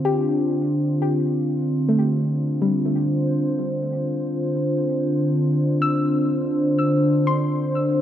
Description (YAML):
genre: ambient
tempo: 62 BPM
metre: 4/4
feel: straight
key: D minor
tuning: A4 = 441 Hz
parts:
  - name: warm analog pad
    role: sustained chords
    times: 0.0-8.0 s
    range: D3 to C5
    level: -20 LUFS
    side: equal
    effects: chorus
  - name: soft round pluck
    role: arpeggios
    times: 0.1-8.0 s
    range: G3 to E6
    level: -27 LUFS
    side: left 2 dB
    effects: chorus, tape echo
room: wet spring reverb, RT60 2.3 s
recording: echo-heavy mix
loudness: -19 LUFS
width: side -10 dB against mid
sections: 0.0-8.0 A section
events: filter sweep on analog synth pad 0.0-8.0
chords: 0.0 Dm7